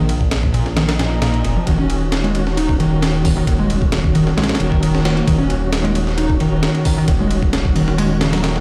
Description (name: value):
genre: breakbeat, breaks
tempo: 133 BPM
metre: 4/4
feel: straight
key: Eb minor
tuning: A4 = 440 Hz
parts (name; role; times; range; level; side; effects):
- fuzz picked electric bass; riff; 0.0-8.5 s; Bb2 to Eb4; -21 LUFS; equal; overdrive, tape echo
- dark detuned saw bass; bass; 0.0-8.6 s; Eb1 to Bb1; -22 LUFS; equal; none
- breakbeat sampler-style drum kit; drums; 0.1-8.6 s; hi-hat, kick drum, ride cymbal, snare drum; -22 LUFS; equal; studio reverb
- swell; sound effects; 1.0-1.7 s; none; -33 LUFS; equal; none
- tonewheel organ; sustained chords; 1.7-8.6 s; Eb3 to Gb4; -26 LUFS; equal; chorus vibrato, fast rotary speaker, vintage 12-bit sampler grit, sidechain pumping
room: light reverb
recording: played on a big sound system in a bare room, stone room reverb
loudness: -17 LUFS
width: mono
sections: 0.0-8.6 A section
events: swell 1.0-1.7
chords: 0.0 Bb5; 1.7 Ebm7